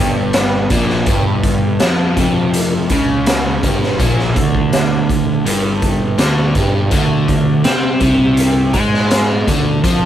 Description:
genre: psychedelic rock.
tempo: 82 BPM.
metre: 4/4.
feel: straight.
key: unclear.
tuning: A4 = 443 Hz.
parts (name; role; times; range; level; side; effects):
overdriven semi-hollow guitar; riff; 0.0-10.1 s; F2 to C4; -16 LUFS; equal; phaser.
fuzz picked electric bass; bass; 0.0-10.1 s; F1 to C3; -20 LUFS; equal; overdrive.
raw garage drum kit; drums; 0.3-10.0 s; hi-hat, kick drum, snare drum; -17 LUFS; equal; none.
room: light reverb.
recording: rough rehearsal-room recording, warm saturation.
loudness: -12 LUFS.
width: side -11 dB against mid.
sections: 0.0-10.1 A section.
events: none.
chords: 0.0 G5; 6.9 D5.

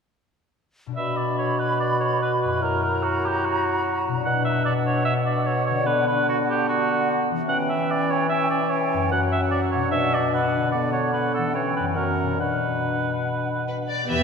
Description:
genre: classical, dramatic, fast romantic movement for symphony orchestra.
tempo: 147 BPM.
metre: 4/4.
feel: straight.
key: B minor.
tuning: A4 = 440 Hz.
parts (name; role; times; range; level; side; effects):
concert harp; arpeggios; 0.9-14.2 s; F#2 to C#5; -27 LUFS; left 4 dB; none.
hollow concert flute; second line; 1.0-13.9 s; F#5 to B5; -30 LUFS; equal; none.
warm clarinet; second line; 1.0-13.9 s; B3 to F#4; -30 LUFS; right 1 dB; none.
warm cor anglais; second line; 1.0-13.7 s; F#4 to F#5; -25 LUFS; right 3 dB; none.
mellow bassoon; accompaniment; 1.0-13.9 s; B2 to F#3; -27 LUFS; equal; none.
rich symphonic violin section; melody; 13.7-14.2 s; B4 to E5; -26 LUFS; left 2 dB; none.
rich symphonic violin section; second line; 14.1-14.2 s; B4; -29 LUFS; left 3 dB; none.
warm studio viola section; accompaniment; 14.1-14.2 s; B3 to G4; -26 LUFS; right 1 dB; none.
rich symphonic double bass section; bass; 14.1-14.2 s; E2; -28 LUFS; right 4 dB; none.
room: wet church reverb, RT60 2.7 s.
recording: none.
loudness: -20 LUFS.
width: side -6 dB against mid.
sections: 1.0-14.1 A section.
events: none.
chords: 1.0 Bm; 2.6 F#7b9; 4.3 Bm; 5.9 Bm/D; 7.5 C#dim/E; 9.1 F#; 9.9 Bm; 10.7 Bm/D; 11.6 C#dim/E; 12.0 F#; 12.4 Bm.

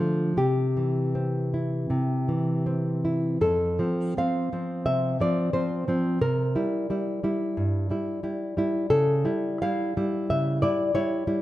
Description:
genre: romantic piece for solo classical guitar.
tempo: 75-93 BPM.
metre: 4/4.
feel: rubato.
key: F major.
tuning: A4 = 440 Hz.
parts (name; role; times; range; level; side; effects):
nylon-string guitar; solo; 0.0-11.4 s; F2 to F5; -23 LUFS; equal; none.
room: moderate recital hall reverb, RT60 1.6 s.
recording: none.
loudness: -23 LUFS.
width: side -15 dB against mid.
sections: 0.0-3.4 A section; 3.4-11.4 B section.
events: none.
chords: 0.4 C; 3.4 F; 6.2 C7; 8.9 A7/C#.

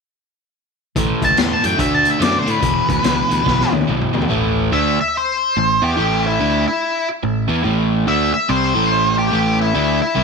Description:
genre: blues rock power trio and southern rock.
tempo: 143 BPM.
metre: 4/4.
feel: swing 62% on 8ths.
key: unclear.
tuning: A4 = 440 Hz.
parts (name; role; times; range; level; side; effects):
crunchy overdriven guitar; riff; 1.0-10.2 s; E2 to E4; -19 LUFS; right 1 dB; none.
modern bright picked electric bass; bass; 1.0-10.2 s; E1 to A2; -22 LUFS; right 1 dB; none.
raw garage drum kit; drums; 1.0-4.3 s; hi-hat, kick drum, snare drum, toms; -21 LUFS; left 4 dB; none.
octave-fuzz lead guitar; melody; 1.2-10.2 s; E4 to C6; -18 LUFS; left 1 dB; distortion.
room: light reverb, small room ambience.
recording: 1960s-style stereo.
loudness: -14 LUFS.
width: side -4 dB against mid.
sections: 1.0-4.3 A section; 4.3-10.2 B section.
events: drum fill 3.5-4.3.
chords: 1.0 A5; 1.8 D; 2.6 E5; 4.3 A5.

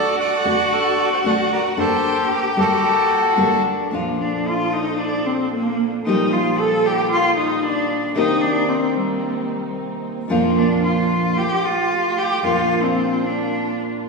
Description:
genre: tango.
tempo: 112 BPM.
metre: 4/4.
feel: rubato.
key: G harmonic minor, Bb major from 3.9 s.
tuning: A4 = 440 Hz.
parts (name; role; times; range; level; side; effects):
bandoneon; melody; 0.0-3.6 s; F#4 to F#5; -19 LUFS; equal; none.
warm cello; second line; 0.0-13.8 s; G3 to A4; -20 LUFS; left 1 dB; none.
muted studio string section; stabs; 0.0-14.1 s; Bb2 to A4; -30 LUFS; right 3 dB; none.
nylon-string guitar; accompaniment; 0.5-14.1 s; F2 to A4; -22 LUFS; equal; none.
room: wet scoring stage reverb, RT60 2.0 s.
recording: heard from further back in the room, small room ambience.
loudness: -17 LUFS.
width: side -3 dB against mid.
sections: 0.0-3.9 A section; 3.9-14.1 B section.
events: cello solo 3.9-14.1.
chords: 0.0 D; 1.8 Gmadd9; 3.9 Bbmaj7; 6.1 Ebadd9/Bb; 8.2 Cm7; 10.3 Bb/F; 11.4 Fadd9; 12.4 Bb.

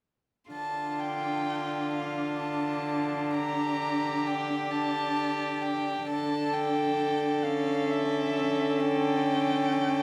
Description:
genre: classical, slow romantic movement for string quartet.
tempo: 42-46 BPM (dotted quarters).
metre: 12/8.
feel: rubato.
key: D minor.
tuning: A4 = 440 Hz.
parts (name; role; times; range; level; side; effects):
dark violin; melody; 0.5-10.0 s; E5 to Bb5; -35 LUFS; equal; none.
rich violin; second line; 0.5-10.0 s; F4 to A4; -35 LUFS; equal; none.
dark viola; accompaniment; 0.5-10.0 s; C#4 to D4; -34 LUFS; equal; none.
rich cello; bass; 0.5-10.0 s; D3; -36 LUFS; equal; none.
room: wet recital hall reverb, RT60 1.5 s.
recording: none.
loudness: -29 LUFS.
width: mono.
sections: 0.5-10.0 A section.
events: none.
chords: 0.5 Dm; 6.1 A7/D.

